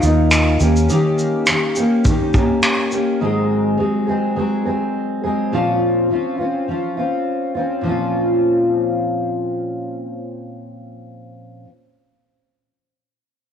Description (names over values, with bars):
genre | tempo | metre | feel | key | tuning
acoustic pop | 104 BPM | 4/4 | swing 55% on 16ths | Bb minor | A4 = 441 Hz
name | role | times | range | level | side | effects
fingerpicked steel-string acoustic guitar | accompaniment | 0.0-11.7 s | Ab2 to Ab4 | -18 LUFS | left 1 dB | double-tracked left and right, cassette tape
vintage muted fingered electric bass | bass | 0.0-0.9 s | Eb2 | -15 LUFS | equal | none
loose indie drum kit | drums | 0.0-3.1 s | finger snaps, kick drum, shaker | -18 LUFS | equal | cassette tape
room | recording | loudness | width
moderate lush hall reverb, RT60 1.9 s, small room ambience | home recording on cassette | -16 LUFS | side -8 dB against mid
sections
0.0-7.8 A section; 7.8-10.2 B section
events
none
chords
0.0 Ebsus2; 0.6 Eb7; 3.2 Ab7; 5.5 Bbmadd9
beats
0.31 | 0.89 1.47 2.05 2.63 | 3.21 3.79 4.37 4.95 | 5.52 6.10 6.68 7.26 | 7.84 8.42 9.00 9.58